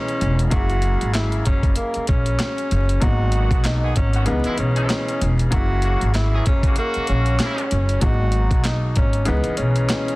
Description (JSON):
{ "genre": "hip hop, boom-bap hip-hop", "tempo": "96 BPM", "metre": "4/4", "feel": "swing 59% on 16ths", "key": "unclear", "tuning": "A4 = 439 Hz", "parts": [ { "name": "breathy tenor saxophone", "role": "melody", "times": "0.0-10.2 s", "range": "A#3 to F#4", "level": "-25 LUFS", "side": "equal", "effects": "high-pass filter, low-pass filter, digital delay" }, { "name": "bright upright piano", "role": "accompaniment", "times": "0.0-10.2 s", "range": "B2 to E4", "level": "-28 LUFS", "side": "left 2 dB", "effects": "high-pass filter, low-pass filter" }, { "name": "boom bap sampler-style drum kit", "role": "drums", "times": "0.1-10.2 s", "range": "handclaps, hi-hat, kick drum, snare drum", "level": "-22 LUFS", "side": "equal", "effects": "none" }, { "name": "upright bass", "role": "bass", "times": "0.2-9.9 s", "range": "E1 to C#2", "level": "-20 LUFS", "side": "equal", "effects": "none" }, { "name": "bright horn section", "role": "stabs", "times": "3.3-7.7 s", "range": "B2 to G#4", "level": "-29 LUFS", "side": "right 1 dB", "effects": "high-pass filter, low-pass filter, digital delay" } ], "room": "small room ambience", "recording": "dense, heavily limited modern master, vinyl crackle", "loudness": "-17 LUFS", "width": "side -21 dB against mid", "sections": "0.0-10.2 A section", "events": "none", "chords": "0.0 C#m9; 0.5 F#9; 3.0 G#m7; 4.3 C#m9; 5.5 F#9; 8.0 G#m7; 9.3 C#m9" }